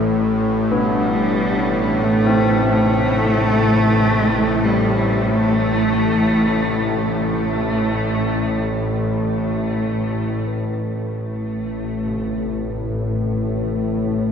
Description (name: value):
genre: dark ambient drone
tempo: 46 BPM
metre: 4/4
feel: straight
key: A minor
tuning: A4 = 439 Hz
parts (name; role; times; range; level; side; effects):
- bowed-like drone; drone; 0.0-14.3 s; A1 to A2; -18 LUFS; left 1 dB; built-in reverb
- quartz singing bowl; texture; 0.0-14.3 s; A4 to B4; -37 LUFS; right 1 dB; none
- rich cello; melody; 0.7-7.9 s; G3 to A3; -22 LUFS; right 1 dB; shimmer reverb, tape echo
- old church bells; arpeggios; 0.7-14.3 s; C3 to C4; -26 LUFS; left 2 dB; shimmer reverb, tape echo
room: wet plate reverb, RT60 3.1 s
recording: dreamy mix soaked in reverb, cassette tape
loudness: -17 LUFS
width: side -7 dB against mid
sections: 0.0-10.5 A section; 10.5-14.3 B section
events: filter sweep on synth drone 10.5-14.3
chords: 0.0 Am